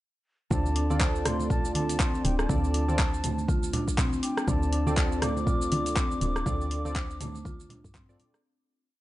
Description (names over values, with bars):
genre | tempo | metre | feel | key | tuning
afro house | 121 BPM | 4/4 | swing 58% on 16ths | D minor | A4 = 440 Hz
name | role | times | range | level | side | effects
mellow bansuri | melody | 0.5-7.9 s | G5 to D6 | -36 LUFS | left 1 dB | tape echo
marimba with medium hard mallets | arpeggios | 0.5-8.3 s | A3 to C5 | -33 LUFS | equal | sidechain pumping, tape echo
warm analog keys | stabs | 0.5-8.4 s | C4 to D5 | -34 LUFS | right 1 dB | chorus, sidechain pumping
woody FM bass | bass | 0.5-8.2 s | D1 to G2 | -31 LUFS | equal | tube saturation, sidechain pumping
deep house drum kit | drums | 0.5-8.4 s | handclaps, hi-hat, rim click, shaker, toms | -32 LUFS | equal | none
electronic kick drum | drums | 0.5-8.1 s | none | -28 LUFS | equal | none
congas | percussion | 0.5-8.3 s | none | -34 LUFS | right 1 dB | none
room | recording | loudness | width
digital ambience | dry, gritty hardware recording, nothing above 10.6 kHz | -25 LUFS | side -16 dB against mid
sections
0.5-8.4 drop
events
drop 0.5-8.4; fade-out 5.8-8.4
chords
0.5 Dm7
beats
| 0.51 1.01 1.50 2.00 | 2.49 2.99 3.48 3.98 | 4.48 4.97 5.47 5.96 | 6.46 6.96 7.45 7.95